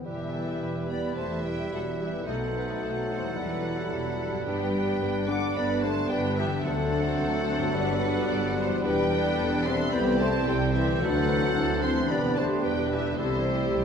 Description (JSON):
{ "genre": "classical, dramatic, fast romantic movement for symphony orchestra", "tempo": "110 BPM", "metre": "4/4", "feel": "straight", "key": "E minor", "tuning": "A4 = 440 Hz", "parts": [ { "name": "small flute group", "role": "second line", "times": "0.0-13.8 s", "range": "E4 to F#5", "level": "-34 LUFS", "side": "left 2 dB", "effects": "none" }, { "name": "warm bassoon", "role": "accompaniment", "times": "0.0-13.8 s", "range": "E3 to A3", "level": "-34 LUFS", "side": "right 2 dB", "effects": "none" }, { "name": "concert harp", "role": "arpeggios", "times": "0.0-13.8 s", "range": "E2 to C5", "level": "-36 LUFS", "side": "left 8 dB", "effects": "none" }, { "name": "rich studio violin section", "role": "melody", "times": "0.1-13.8 s", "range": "C5 to D6", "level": "-36 LUFS", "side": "equal", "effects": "none" }, { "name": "clear clarinet", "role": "second line", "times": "0.1-13.8 s", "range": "C4 to E4", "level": "-35 LUFS", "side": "left 1 dB", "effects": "none" }, { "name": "warm oboe", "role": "second line", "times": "0.1-13.8 s", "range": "A4 to C5", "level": "-39 LUFS", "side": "right 3 dB", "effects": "none" }, { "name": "warm symphonic violin section", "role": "second line", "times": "0.1-13.8 s", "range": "G4 to E5", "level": "-38 LUFS", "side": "left 2 dB", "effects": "none" }, { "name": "mellow French horn section", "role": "sustained chords", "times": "0.1-13.8 s", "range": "C3 to D4", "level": "-32 LUFS", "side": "left 2 dB", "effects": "none" }, { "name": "warm symphonic cello section", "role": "bass", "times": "0.1-13.8 s", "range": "C2 to B2", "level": "-35 LUFS", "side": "right 2 dB", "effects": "none" }, { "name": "warm symphonic double bass section", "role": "bass", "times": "0.1-13.8 s", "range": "E1 to D2", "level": "-34 LUFS", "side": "right 3 dB", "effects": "none" }, { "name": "rich symphonic viola section", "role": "accompaniment", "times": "0.3-13.8 s", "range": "G3 to G4", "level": "-35 LUFS", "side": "right 2 dB", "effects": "none" }, { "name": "timpani", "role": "percussion", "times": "6.6-7.4, 11.0-11.8 s", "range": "D3", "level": "-37 LUFS", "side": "equal", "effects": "none" } ], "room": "wet scoring stage reverb, RT60 1.7 s", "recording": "minimal, uncompressed stereo recording", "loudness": "-24 LUFS", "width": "side -7 dB against mid", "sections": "0.1-13.8 A section", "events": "none", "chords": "0.1 Em; 2.3 B7b9; 3.4 Em; 4.5 G; 6.7 D7; 7.8 G; 8.8 Em7; 9.9 Am7/C; 11.0 D9; 12.1 Em7; 13.2 Am7/C", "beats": "| 0.05 0.61 1.16 1.72 | 2.27 2.82 3.37 3.92 | 4.47 5.02 5.57 6.11 | 6.66 7.20 7.75 8.30 | 8.84 9.39 9.93 10.47 | 11.02 11.56 12.10 12.64 | 13.18 13.73" }